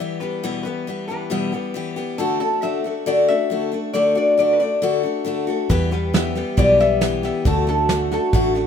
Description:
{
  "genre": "honky-tonk and classic country",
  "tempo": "137 BPM",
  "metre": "4/4",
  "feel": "straight",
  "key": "unclear",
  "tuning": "A4 = 440 Hz",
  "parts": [
    { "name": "lap resonator guitar", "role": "melody", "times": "0.0-8.7 s", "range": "A4 to E5", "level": "-21 LUFS", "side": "left 1 dB", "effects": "none" },
    { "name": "picked steel-string acoustic guitar", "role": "accompaniment", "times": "0.0-8.7 s", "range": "E2 to G4", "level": "-23 LUFS", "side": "left 4 dB", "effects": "none" },
    { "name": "mellow French horn section", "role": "sustained chords", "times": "5.7-8.7 s", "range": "D3 to G4", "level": "-26 LUFS", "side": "right 4 dB", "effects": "none" },
    { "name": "vintage muted fingered electric bass", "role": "bass", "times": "5.7-8.7 s", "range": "A1 to E2", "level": "-23 LUFS", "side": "equal", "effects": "none" },
    { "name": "soft brush drum kit", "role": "drums", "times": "5.7-8.6 s", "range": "hi-hat, kick drum, snare drum", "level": "-22 LUFS", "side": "right 1 dB", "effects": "none" }
  ],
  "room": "light reverb",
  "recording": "minimal, uncompressed stereo recording",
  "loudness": "-18 LUFS",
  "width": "side -8 dB against mid",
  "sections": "0.0-8.7 A section",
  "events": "none",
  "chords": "0.0 Em; 2.2 D; 5.7 Em; 7.5 D"
}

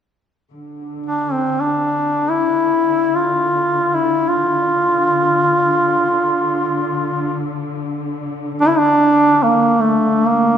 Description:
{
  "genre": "caucasian folk, Caucasian lament",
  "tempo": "free time",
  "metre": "none",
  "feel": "none",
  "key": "D minor",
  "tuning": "A4 = 440 Hz",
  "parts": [
    { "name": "dark symphonic cello section", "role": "drone", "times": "0.5-10.6 s", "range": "D3", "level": "-24 LUFS", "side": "left 1 dB", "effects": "none" },
    { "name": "warm duduk", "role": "melody", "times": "1.1-10.6 s", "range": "A3 to F4", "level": "-14 LUFS", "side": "equal", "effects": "none" }
  ],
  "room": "wet church reverb, RT60 2.6 s",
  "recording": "minimal, uncompressed stereo recording",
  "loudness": "-14 LUFS",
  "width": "side -8 dB against mid",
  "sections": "0.5-10.6 A section",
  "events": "none",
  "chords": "none"
}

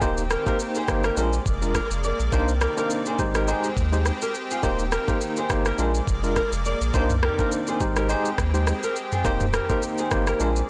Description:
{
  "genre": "afrobeats",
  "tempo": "104 BPM",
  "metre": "4/4",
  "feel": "swing 55% on 16ths",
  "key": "Eb major",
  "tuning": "A4 = 436 Hz",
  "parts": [
    { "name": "tine electric piano", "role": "accompaniment", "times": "0.0-10.6 s", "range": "Ab3 to C5", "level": "-29 LUFS", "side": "equal", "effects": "medium tremolo" },
    { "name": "lush unison pad", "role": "sustained chords", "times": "0.0-10.7 s", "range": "C3 to D5", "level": "-35 LUFS", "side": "equal", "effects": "chorus" },
    { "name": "flamenco guitar", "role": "riff", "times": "0.0-10.6 s", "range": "F4 to D5", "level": "-31 LUFS", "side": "equal", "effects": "tape echo" },
    { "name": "warm sub bass", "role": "bass", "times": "0.0-10.6 s", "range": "Eb1 to Eb2", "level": "-28 LUFS", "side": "equal", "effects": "none" },
    { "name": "afro-pop drum kit", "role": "drums", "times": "0.0-10.7 s", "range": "kick drum, rim click, shaker, toms", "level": "-30 LUFS", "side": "equal", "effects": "vintage 12-bit sampler grit, soft clipping on snare" }
  ],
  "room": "light reverb",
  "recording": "blown-out, overdriven recording, overdrive",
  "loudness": "-24 LUFS",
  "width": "mono",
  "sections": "0.0-10.7 A section",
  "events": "none",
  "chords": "0.0 Eb6; 1.2 Bb7; 2.3 Cm9; 3.2 Abmaj7; 4.6 Eb6; 5.8 Bb7; 6.9 Cm9; 7.8 Abmaj7; 9.2 Eb6"
}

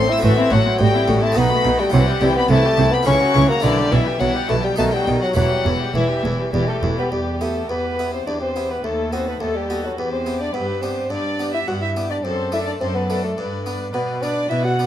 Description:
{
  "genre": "classical, baroque-style concerto movement with solo episodes",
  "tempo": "106 BPM",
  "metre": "3/4",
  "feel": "straight",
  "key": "E minor",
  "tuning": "A4 = 441 Hz",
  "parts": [
    { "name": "dark bassoon", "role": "melody", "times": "0.0-14.9 s", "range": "D3 to F#4", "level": "-21 LUFS", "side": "left 1 dB", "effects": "none" },
    { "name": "warm chamber violin section", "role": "melody", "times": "0.0-14.9 s", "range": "B4 to E6", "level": "-27 LUFS", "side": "left 6 dB", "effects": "none" },
    { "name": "warm chamber violin section", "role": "second line", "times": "0.0-14.9 s", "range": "D#4 to F#5", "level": "-28 LUFS", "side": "left 1 dB", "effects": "none" },
    { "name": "dark chamber viola section", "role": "accompaniment", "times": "0.0-14.9 s", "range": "D#3 to B4", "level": "-28 LUFS", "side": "left 3 dB", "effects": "none" },
    { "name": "harpsichord", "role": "accompaniment", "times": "0.0-14.9 s", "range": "D#2 to D#5", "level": "-28 LUFS", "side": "right 1 dB", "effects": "none" },
    { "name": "dark chamber cello section", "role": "bass", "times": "0.0-14.9 s", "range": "D#2 to C#3", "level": "-23 LUFS", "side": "right 2 dB", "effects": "none" },
    { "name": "rich chamber double bass section", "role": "bass", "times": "0.0-6.9 s", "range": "E1 to C#2", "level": "-23 LUFS", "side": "right 3 dB", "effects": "none" }
  ],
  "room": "moderate recital hall reverb, RT60 1.7 s",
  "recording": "none",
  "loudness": "-17 LUFS",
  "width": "side -11 dB against mid",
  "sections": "0.0-7.1 A section; 7.1-14.9 B section",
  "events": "none",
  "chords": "0.2 F#m7b5/A; 1.4 B7; 1.9 C; 3.1 F#7/C#; 3.6 Em/B; 4.8 B; 5.4 Em; 8.8 B7/D#; 10.0 Em; 10.5 G; 12.2 D/F#; 13.4 G; 13.9 Bm"
}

